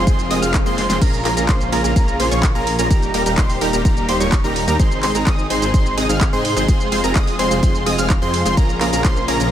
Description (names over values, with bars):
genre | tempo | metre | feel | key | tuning
EDM, festival progressive house | 127 BPM | 4/4 | straight | F minor | A4 = 439 Hz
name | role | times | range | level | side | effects
rich studio string section | sustained chords | 0.0-9.5 s | Bb2 to Ab4 | -26 LUFS | left 1 dB | vintage 12-bit sampler grit, sidechain pumping
wide unison lead | arpeggios | 0.0-9.5 s | Bb5 to F6 | -23 LUFS | right 1 dB | sidechain pumping, tape echo
supersaw stab | riff | 0.0-9.5 s | G3 to F5 | -21 LUFS | right 1 dB | sidechain pumping, tape echo
wide detuned saw bass | bass | 0.0-9.5 s | Eb1 to Ab2 | -24 LUFS | equal | chorus, sidechain pumping
electronic kick drum | drums | 0.1-9.1 s | none | -16 LUFS | equal | none
pop drum kit | drums | 0.1-9.5 s | crash cymbal, handclaps, hi-hat, ride cymbal, shaker, snare drum | -25 LUFS | right 1 dB | none
swell | sound effects | 0.3-1.0 s | none | -30 LUFS | left 3 dB | none
room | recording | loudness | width
light reverb | none | -14 LUFS | side -10 dB against mid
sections
0.0-9.5 A section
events
swell 0.3-1.0; drum fill 0.8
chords
0.0 Fm; 1.0 Bbm7; 2.9 Eb; 4.8 Ab; 6.7 Fm; 8.6 Bbm7